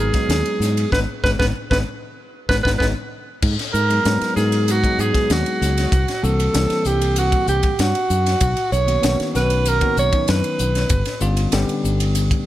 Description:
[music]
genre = electric jazz fusion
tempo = 96 BPM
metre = 4/4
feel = straight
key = G# minor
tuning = A4 = 444 Hz
[part]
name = warm alto saxophone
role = melody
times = 0.0-11.2 s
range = F#4 to C#5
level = -21 LUFS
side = right 2 dB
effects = slapback echo
[part]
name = bell-like tine electric piano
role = accompaniment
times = 0.0-12.5 s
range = D3 to B4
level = -24 LUFS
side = left 2 dB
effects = none
[part]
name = fingered electric bass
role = bass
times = 0.0-12.3 s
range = G1 to G#2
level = -20 LUFS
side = equal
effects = none
[part]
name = crisp fusion drum kit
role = drums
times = 0.1-12.5 s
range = crash cymbal, hi-hat, kick drum, ride cymbal, snare drum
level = -23 LUFS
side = left 1 dB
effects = none
[sound]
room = small room ambience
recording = none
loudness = -16 LUFS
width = side -14 dB against mid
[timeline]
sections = 0.0-3.4 A section; 3.4-12.5 B section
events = band accent 0.9-3.4; drum fill 2.8-3.4; alto saxophone solo 3.4-12.5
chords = 0.0 G#m7; 5.9 C7#11; 8.4 Bmaj9; 10.9 G7#11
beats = 0.29 | 0.92 1.55 2.17 2.80 | 3.42 4.05 4.67 5.30 | 5.92 6.55 7.17 7.79 | 8.41 9.04 9.66 10.28 | 10.91 11.53 12.15

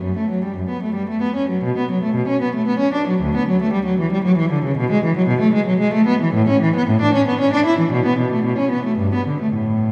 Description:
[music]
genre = classical, baroque-style suite movement for unaccompanied cello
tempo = 114 BPM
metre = 3/4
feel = rubato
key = unclear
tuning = A4 = 441 Hz
[part]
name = warm cello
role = solo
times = 0.0-9.9 s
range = D2 to E4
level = -18 LUFS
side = equal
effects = none
[sound]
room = wet cathedral reverb, RT60 4.4 s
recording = heard from further back in the room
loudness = -18 LUFS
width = mono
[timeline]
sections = 0.0-9.9 A section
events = none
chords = none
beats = | 0.03 0.57 1.10 | 1.62 2.15 2.67 | 3.21 3.74 4.26 | 4.78 5.29 5.80 | 6.34 6.88 7.40 | 7.92 8.45 8.99 | 9.54

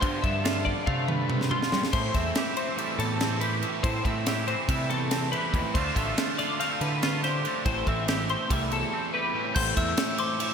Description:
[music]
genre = math rock and midwest emo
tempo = 283 BPM (eighths)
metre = 9/8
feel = straight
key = A minor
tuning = A4 = 440 Hz
[part]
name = twangy electric guitar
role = accompaniment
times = 0.0-10.5 s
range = E2 to G4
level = -32 LUFS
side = right 7 dB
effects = analog chorus
[part]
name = twelve-string electric guitar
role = arpeggios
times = 0.0-10.5 s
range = A4 to C6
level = -30 LUFS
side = left 5 dB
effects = analog chorus, slapback echo
[part]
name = crunchy overdriven guitar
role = riff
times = 0.0-10.5 s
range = G2 to F4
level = -33 LUFS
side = equal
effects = slapback echo
[part]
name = growling picked electric bass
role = bass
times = 0.0-9.9 s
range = A1 to G3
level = -31 LUFS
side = equal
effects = overdrive
[part]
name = crisp fusion drum kit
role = drums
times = 0.0-10.5 s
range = crash cymbal, kick drum, ride cymbal, snare drum, toms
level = -29 LUFS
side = equal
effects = none
[part]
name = glockenspiel with soft plastic mallets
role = melody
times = 9.5-10.5 s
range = D6 to G6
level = -30 LUFS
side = left 1 dB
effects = slapback echo
[sound]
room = moderate recital hall reverb, RT60 1.4 s, small room ambience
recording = big arena sound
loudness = -24 LUFS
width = side -6 dB against mid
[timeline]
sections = 0.0-9.6 A section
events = drum fill 0.7-1.9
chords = 0.0 G9sus4; 1.9 Am7; 5.7 Dm7; 7.6 Am7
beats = | 0.02 0.23 0.44 0.65 0.86 1.08 1.29 1.50 1.71 | 1.93 2.14 2.35 2.56 2.77 2.98 3.20 3.41 3.62 | 3.83 4.04 4.26 4.47 4.68 4.89 5.11 5.32 5.53 | 5.74 5.95 6.16 6.38 6.59 6.80 7.01 7.22 7.44 | 7.65 7.86 8.07 8.28 8.49 8.71 8.92 9.13 9.34 | 9.55 9.76 9.97 10.19 10.40

